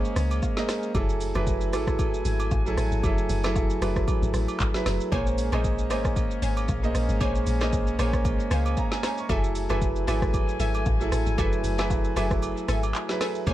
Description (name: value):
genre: amapiano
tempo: 115 BPM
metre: 4/4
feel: swing 55% on 16ths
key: unclear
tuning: A4 = 441 Hz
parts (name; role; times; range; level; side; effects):
- clear concert grand piano; accompaniment; 0.0-13.5 s; Gb3 to Db6; -29 LUFS; right 3 dB; none
- mellow brass ensemble; sustained chords; 0.0-13.5 s; Gb3 to Ab5; -35 LUFS; left 3 dB; none
- deep log drum bass; bass; 0.0-13.5 s; Gb1 to Db2; -27 LUFS; equal; none
- afro-pop drum kit; drums; 0.1-13.5 s; handclaps, hi-hat, kick drum, rim click, shaker, snare drum; -28 LUFS; equal; none
- agogo bells and woodblock; percussion; 0.3-13.5 s; none; -39 LUFS; right 3 dB; none
- glassy wavetable pluck; stabs; 5.1-13.5 s; A4 to Ab5; -34 LUFS; left 1 dB; chorus, ping-pong delay
room: studio ambience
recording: dark, warm production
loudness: -23 LUFS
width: side -14 dB against mid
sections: 0.0-13.5 A section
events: break 12.4-13.5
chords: 0.0 Bbm9; 0.9 Gbm9; 5.1 Bbm9; 9.3 Gbm9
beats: 0.43 | 0.95 1.47 1.99 2.51 | 3.04 3.56 4.08 4.60 | 5.12 5.64 6.17 6.69 | 7.21 7.73 8.25 8.77 | 9.29 9.82 10.34 10.86 | 11.38 11.90 12.43 12.95 | 13.47